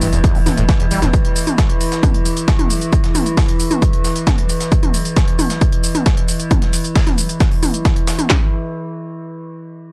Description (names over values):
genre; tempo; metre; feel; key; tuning
driving peak-time techno; 134 BPM; 4/4; straight; unclear; A4 = 440 Hz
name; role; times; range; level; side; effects
overdriven acid bass; riff; 0.0-1.1 s; E2 to G3; -25 LUFS; equal; distortion, lush chorus, sidechain pumping, analog delay
saturated sub bass; bass; 0.0-1.1 s; E1; -21 LUFS; equal; overdrive, sidechain pumping, low-pass filter
metallic inharmonic drone; drone; 0.0-8.3 s; E3; -25 LUFS; equal; chorus, built-in reverb, sidechain pumping
breakbeat sampler-style drum kit; drums; 0.0-8.2 s; hi-hat, snare drum; -30 LUFS; equal; overdrive, sidechain pumping on hats, high-pass filter on hats, high-pass filter on snare, high-pass filter on room
techno drum kit; drums; 0.0-8.3 s; hi-hat, shaker, toms; -24 LUFS; equal; none
techno drum kit; drums; 0.2-8.4 s; handclaps, kick drum, snare drum; -17 LUFS; equal; none
room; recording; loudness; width
digital ambience; dry, gritty hardware recording, cassette tape; -16 LUFS; mono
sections
0.0-8.3 A section; 8.3-9.9 B section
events
none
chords
none